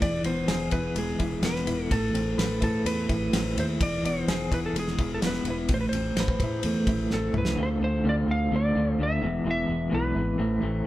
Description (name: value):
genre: psychedelic rock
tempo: 127 BPM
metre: 4/4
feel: straight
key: E phrygian dominant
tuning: A4 = 443 Hz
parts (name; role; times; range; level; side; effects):
- electric slide guitar; melody; 0.0-10.8 s; G#4 to F5; -32 LUFS; equal; none
- electric guitar through a small old amp; riff; 0.0-10.9 s; A2 to B4; -27 LUFS; equal; tremolo
- fingered electric bass; bass; 0.0-10.8 s; E1 to A2; -31 LUFS; equal; none
- damped 70s drum kit; drums; 0.0-7.6 s; kick drum, ride cymbal, snare drum, toms; -29 LUFS; equal; none
- congas; percussion; 0.3-7.4 s; none; -41 LUFS; right 2 dB; none
room: moderate large studio reverb, RT60 0.9 s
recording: band playing live in one room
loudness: -24 LUFS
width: side -15 dB against mid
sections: 0.0-7.6 A section; 7.6-10.9 B section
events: drum fill 7.1-7.6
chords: 0.0 E; 1.9 Amadd9; 3.8 E; 5.7 Amadd9; 7.6 Dm7; 9.2 E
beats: | 0.03 0.51 0.98 1.45 | 1.93 2.40 2.87 3.34 | 3.81 4.28 4.75 5.23 | 5.70 6.17 6.64 7.11 | 7.58 8.05 8.52 8.99 | 9.46 9.92 10.39 10.86